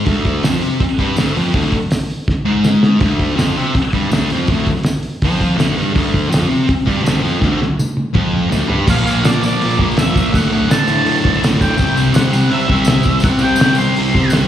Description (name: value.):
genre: garage rock duo or trio.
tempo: 164 BPM.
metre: 4/4.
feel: straight.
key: unclear.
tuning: A4 = 441 Hz.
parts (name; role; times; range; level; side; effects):
thick fuzz guitar; riff; 0.0-14.5 s; D2 to C4; -15 LUFS; equal; distortion, slapback echo.
cloth-damped thuddy drum kit; drums; 0.1-14.4 s; crash cymbal, hi-hat, kick drum, snare drum, toms; -17 LUFS; equal; none.
tambourine; percussion; 0.4-14.5 s; none; -32 LUFS; left 2 dB; none.
octave-fuzz lead guitar; melody; 8.9-14.3 s; D5 to C6; -20 LUFS; right 1 dB; distortion, slapback echo, tape echo.
room: wet club reverb, RT60 0.5 s.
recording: live gig heard through the venue's PA, recital hall reverb.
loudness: -12 LUFS.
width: side -10 dB against mid.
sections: 0.0-8.9 A section; 8.9-14.5 B section.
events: drum fill 2.3-3.0, 7.4-8.9.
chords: 0.0 Dm7b5; 8.9 Bb; 10.3 D; 11.8 C.